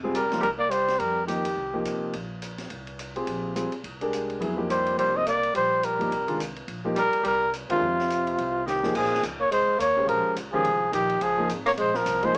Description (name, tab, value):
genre	modal jazz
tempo	212 BPM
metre	4/4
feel	swing 59% on 8ths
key	F dorian, Bb dorian from 8.9 s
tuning	A4 = 440 Hz
part	warm concert grand piano	accompaniment	0.0-12.3 s	Eb3 to C5	-29 LUFS	equal	none
part	upright bass	bass	0.0-12.4 s	F1 to C3	-38 LUFS	equal	none
part	mellow tenor saxophone	second line	0.1-1.8, 4.7-12.4 s	C3 to C4	-30 LUFS	equal	none
part	open jazz drum kit	drums	0.1-12.4 s	crash cymbal, hi-hat, kick drum, ride cymbal, snare drum	-37 LUFS	equal	none
part	mellow trumpet	melody	0.2-1.8, 4.7-12.4 s	F4 to Eb5	-23 LUFS	equal	none
room	moderate club ambience, RT60 0.5 s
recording	small speaker sound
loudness	-23 LUFS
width	side -33 dB against mid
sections	0.0-8.9 A section; 8.9-12.4 B section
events	band accent 7.7; drum fill 8.7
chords	0.0 F9sus4; 8.9 Bbm11